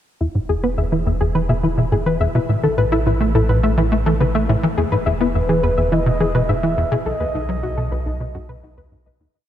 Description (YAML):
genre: ambient, sequencer-driven space music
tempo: 105 BPM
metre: 4/4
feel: straight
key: E major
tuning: A4 = 443 Hz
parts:
  - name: soft round pluck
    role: arpeggios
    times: 0.2-9.3 s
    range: D#4 to E5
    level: -23 LUFS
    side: left 3 dB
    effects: chorus, auto-pan, ping-pong delay
  - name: tight sequencer bass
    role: riff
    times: 0.2-9.3 s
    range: B1 to E4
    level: -19 LUFS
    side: equal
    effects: ensemble chorus, ping-pong delay
  - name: warm sub bass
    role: bass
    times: 0.2-9.3 s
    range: E1 to B1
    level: -24 LUFS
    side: equal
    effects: none
  - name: mellow horn-like synth lead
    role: melody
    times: 5.3-8.7 s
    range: B4 to E5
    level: -24 LUFS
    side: equal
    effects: chorus, ping-pong delay
room: moderate huge ambient reverb, RT60 7.8 s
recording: dreamy mix soaked in reverb, cassette tape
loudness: -16 LUFS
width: side -11 dB against mid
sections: 0.2-9.3 A section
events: fade-out 6.3-9.3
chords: 0.2 E; 2.5 Asus2; 4.8 E; 7.1 B7